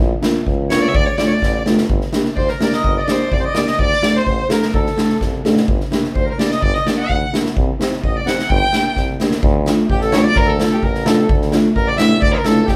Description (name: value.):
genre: klezmer.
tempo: 128 BPM.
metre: 2/4.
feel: straight.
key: G harmonic minor, D harmonic minor from 9.4 s.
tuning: A4 = 441 Hz.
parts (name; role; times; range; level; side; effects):
clear tuba; bass; 0.0-12.8 s; G1 to D2; -24 LUFS; equal; none.
dark upright piano; accompaniment; 0.2-12.6 s; A3 to A4; -20 LUFS; equal; none.
street-band drum kit; drums; 0.2-12.8 s; kick drum, snare drum; -22 LUFS; equal; none.
rich violin; melody; 0.7-12.8 s; G4 to G5; -24 LUFS; equal; none.
accordion; second line; 0.7-12.8 s; G4 to G5; -25 LUFS; equal; none.
room: moderate studio ambience, RT60 0.5 s.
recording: band playing live in one room.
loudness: -16 LUFS.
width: mono.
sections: 0.0-1.9 A section; 1.9-9.4 B section; 9.4-12.8 C section.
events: speeding up 0.0-12.8; drum fill 1.4-1.9, 5.2-5.7, 9.0-9.4.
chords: 0.0 Bb; 0.9 Dm; 1.9 Gm; 3.8 D; 5.7 Gm; 7.6 Cm; 8.5 Gm; 9.4 Dm.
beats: 0.46 | 0.94 1.42 | 1.89 2.37 | 2.84 3.32 | 3.79 4.26 | 4.74 5.21 | 5.68 6.15 | 6.62 7.09 | 7.56 8.03 | 8.50 8.97 | 9.43 9.90 | 10.37 10.83 | 11.29 11.76 | 12.22 12.69.